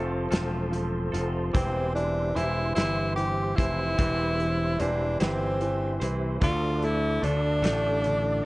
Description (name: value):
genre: six-eight pop ballad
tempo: 49 BPM (dotted quarters)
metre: 6/8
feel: straight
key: unclear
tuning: A4 = 440 Hz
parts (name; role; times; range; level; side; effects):
- clear tenor saxophone; melody; 0.0-8.5 s; A3 to G4; -28 LUFS; equal; none
- clear concert grand piano; accompaniment; 0.0-8.5 s; C3 to A3; -32 LUFS; equal; none
- mellow tonewheel organ; sustained chords; 0.0-8.5 s; G4 to D6; -36 LUFS; equal; chorus vibrato, fast rotary speaker
- direct-recorded clean electric guitar; arpeggios; 0.0-8.5 s; D3 to C5; -37 LUFS; right 3 dB; none
- fretless electric bass; bass; 0.0-8.4 s; E1 to D2; -30 LUFS; equal; none
- loose indie drum kit; drums; 0.3-8.2 s; hi-hat, kick drum, snare drum; -28 LUFS; equal; none
room: small room ambience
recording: worn, warbling old tape, cassette tape, warbly pitch drift, nothing above 10.7 kHz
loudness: -24 LUFS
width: side -20 dB against mid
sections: 0.0-8.5 A section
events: none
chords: 0.0 F; 1.6 C/E; 6.4 Dm